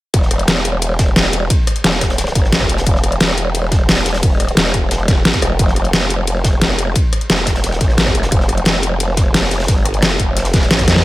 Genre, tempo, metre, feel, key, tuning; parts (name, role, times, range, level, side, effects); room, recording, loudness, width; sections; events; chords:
dark technical drum and bass; 176 BPM; 4/4; straight; E phrygian; A4 = 440 Hz
growl bass; bass; 0.1-11.0 s; E1 to F2; -18 LUFS; equal; chorus, sidechain pumping
crunchy breakbeat drum kit; drums; 0.1-11.0 s; hi-hat, ride cymbal, snare drum; -27 LUFS; equal; high-pass filter on cymbals, high-pass filter on hats, high-pass filter on snare, high-pass filter on room
dubstep drum kit; drums; 0.1-11.0 s; hi-hat, rim click, snare drum; -16 LUFS; equal
electronic kick drum; drums; 0.1-10.9 s; -16 LUFS; equal
little or no reverb; -12 LUFS; side -17 dB against mid
0.1-11.0 A section
drop 0.1-11.0; drum fill 10.8